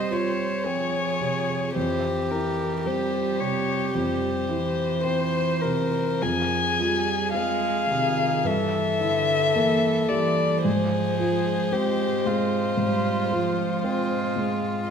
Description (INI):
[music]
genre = classical, slow romantic movement for piano quartet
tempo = 50-57 BPM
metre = 4/4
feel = rubato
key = F minor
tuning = A4 = 440 Hz
[part]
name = dark violin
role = melody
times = 0.0-14.3 s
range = Bb4 to Ab5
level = -26 LUFS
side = left 6 dB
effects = none
[part]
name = rich cello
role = second line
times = 0.0-14.9 s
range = D3 to Ab3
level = -29 LUFS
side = right 9 dB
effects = none
[part]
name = warm violin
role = second line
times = 0.0-14.9 s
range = F4 to C5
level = -29 LUFS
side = left 1 dB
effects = none
[part]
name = dark baby grand piano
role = accompaniment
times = 0.0-14.9 s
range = F2 to F4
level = -28 LUFS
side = right 1 dB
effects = none
[sound]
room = wet recital hall reverb, RT60 1.4 s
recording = minimal, uncompressed stereo recording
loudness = -22 LUFS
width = side -7 dB against mid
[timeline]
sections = 0.0-14.9 A section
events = none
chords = 0.0 Fm; 1.8 C7/F; 6.2 Fm; 8.5 Edim/G; 10.6 Fm/Ab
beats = 0.66 | 1.76 2.86 3.95 5.04 | 6.21 7.34 8.46 9.55 | 10.65 11.73 12.79 13.85